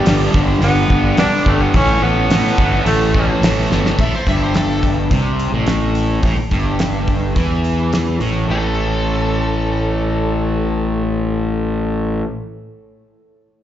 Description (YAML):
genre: classic rock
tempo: 107 BPM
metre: 4/4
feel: straight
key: unclear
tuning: A4 = 440 Hz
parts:
  - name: warm tenor saxophone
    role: melody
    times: 0.0-3.4 s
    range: G3 to D4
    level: -19 LUFS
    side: right 1 dB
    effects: none
  - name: distorted electric guitar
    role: riff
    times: 0.0-12.3 s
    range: G2 to A3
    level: -19 LUFS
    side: equal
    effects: distortion, slapback echo
  - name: fuzz fingered electric bass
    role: bass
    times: 0.1-12.2 s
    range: G1 to A2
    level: -18 LUFS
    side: equal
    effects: overdrive
  - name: damped 70s drum kit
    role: drums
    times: 0.1-8.3 s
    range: crash cymbal, hi-hat, kick drum, snare drum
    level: -19 LUFS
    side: equal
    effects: none
  - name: smooth overdriven lead guitar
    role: second line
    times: 4.0-4.8, 8.5-11.5 s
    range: A4 to E5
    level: -27 LUFS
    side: left 1 dB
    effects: slapback echo, analog delay
room: light reverb, studio reverb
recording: live gig heard through the venue's PA, club reverb, nothing above 7.6 kHz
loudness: -14 LUFS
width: side -11 dB against mid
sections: 0.0-4.0 A section; 4.0-8.5 B section; 8.5-10.8 C section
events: drum fill 3.7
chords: 0.0 G; 1.8 A5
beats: 0.07 0.63 1.19 | 1.75 2.31 2.87 3.43 | 3.99 4.55 5.11 5.67 | 6.24 6.80 7.37 7.93 | 8.49 9.06 9.62 10.19